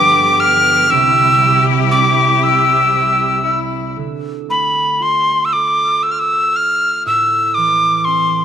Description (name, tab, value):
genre	celtic folk, Celtic slow air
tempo	39 BPM (dotted quarters)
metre	6/8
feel	rubato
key	D dorian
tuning	A4 = 439 Hz
part	breathy bright mid whistle	melody	0.0-8.4 s	B5 to F6	-12 LUFS	equal	tape echo
part	bright cello	second line	0.0-3.9 s	E4 to G4	-18 LUFS	left 13 dB	none
part	concert harp	accompaniment	0.0-8.4 s	G1 to A4	-21 LUFS	right 8 dB	none
part	warm symphonic string section	sustained chords	0.0-3.9 s	G2 to E4	-23 LUFS	left 1 dB	none
room	moderate echo chamber reverb, RT60 1.4 s, studio reverb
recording	1960s-style stereo with parts hard left and right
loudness	-11 LUFS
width	side -9 dB against mid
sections	0.0-4.0 A section; 4.0-8.4 B section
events	none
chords	0.0 G7; 0.9 C; 4.0 Dm; 7.1 Am